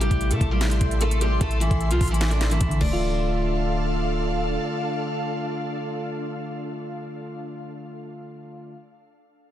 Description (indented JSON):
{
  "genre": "hip hop, trap",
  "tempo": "150 BPM",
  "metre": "4/4",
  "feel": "half-time",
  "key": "D minor",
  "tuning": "A4 = 440 Hz",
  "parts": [
    { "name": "picked steel-string acoustic guitar", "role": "melody", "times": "0.0-4.2 s", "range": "E3 to D5", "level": "-28 LUFS", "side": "left 1 dB", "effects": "low-pass filter, digital delay" },
    { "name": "soft electric-piano-like synth keys", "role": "accompaniment", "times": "0.0-8.7 s", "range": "C3 to F4", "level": "-30 LUFS", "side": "left 2 dB", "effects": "chorus, low-pass filter" },
    { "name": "ethereal airy pad", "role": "sustained chords", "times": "0.0-7.0 s", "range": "D4 to C6", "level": "-31 LUFS", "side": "right 1 dB", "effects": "ensemble chorus, built-in reverb" },
    { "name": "clean 808-style bass", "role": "bass", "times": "0.0-4.6 s", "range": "D1 to C3", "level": "-24 LUFS", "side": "equal", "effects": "none" },
    { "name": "trap drum kit", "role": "drums", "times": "0.0-2.9 s", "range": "crash cymbal, handclaps, hi-hat, kick drum, snare drum", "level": "-27 LUFS", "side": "equal", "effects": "none" }
  ],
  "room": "light reverb",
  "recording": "dense, heavily limited modern master",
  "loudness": "-22 LUFS",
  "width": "side -11 dB against mid",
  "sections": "0.0-3.0 A section; 3.0-6.2 B section",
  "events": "none",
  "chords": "0.0 Am; 2.8 Dm",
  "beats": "0.21 0.61 1.01 | 1.41 1.81 2.21 2.61 | 3.01 3.41 3.81 4.21 | 4.61 5.01 5.41 5.81"
}